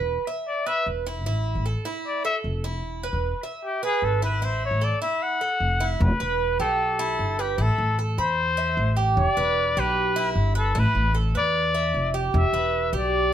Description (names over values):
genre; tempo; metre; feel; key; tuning
latin; 152 BPM; 4/4; straight; E minor; A4 = 435 Hz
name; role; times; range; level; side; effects
Cuban tres; arpeggios; 0.0-13.3 s; E4 to B5; -27 LUFS; right 4 dB; none
upright bass; bass; 0.0-13.3 s; E1 to E2; -25 LUFS; equal; none
breathy trumpet; melody; 0.5-13.3 s; G4 to F#5; -24 LUFS; left 3 dB; none
room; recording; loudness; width
light reverb; none; -21 LUFS; side -10 dB against mid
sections
0.0-6.0 A section; 6.0-13.3 B section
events
trumpet solo 0.0-6.0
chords
0.0 E5; 1.3 A5; 2.8 E5; 4.4 A5; 6.0 Em; 7.6 Amadd9; 9.2 Em7; 10.8 Asus2; 12.3 Em7